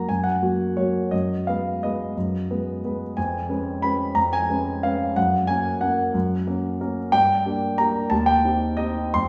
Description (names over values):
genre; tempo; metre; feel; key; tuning
classical, piano waltz; 164-193 BPM; 3/4; rubato; F# major; A4 = 438 Hz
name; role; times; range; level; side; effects
warm concert grand piano; solo; 0.0-9.3 s; Eb2 to C6; -23 LUFS; equal; none
room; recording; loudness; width
wet stone room reverb, RT60 1.3 s; heard from further back in the room; -23 LUFS; mono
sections
0.0-9.3 A section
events
none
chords
0.0 F#; 1.1 G#m7/F#; 3.2 C#7/E#; 5.2 F#; 7.1 Gm; 8.1 Cm/Eb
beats
| 0.09 0.42 0.78 | 1.13 1.47 1.81 | 2.15 2.48 2.83 | 3.17 3.49 3.84 | 4.16 4.49 4.83 | 5.16 5.48 5.82 | 6.14 6.47 6.81 | 7.13 7.46 7.79 | 8.11 8.44 8.78 | 9.14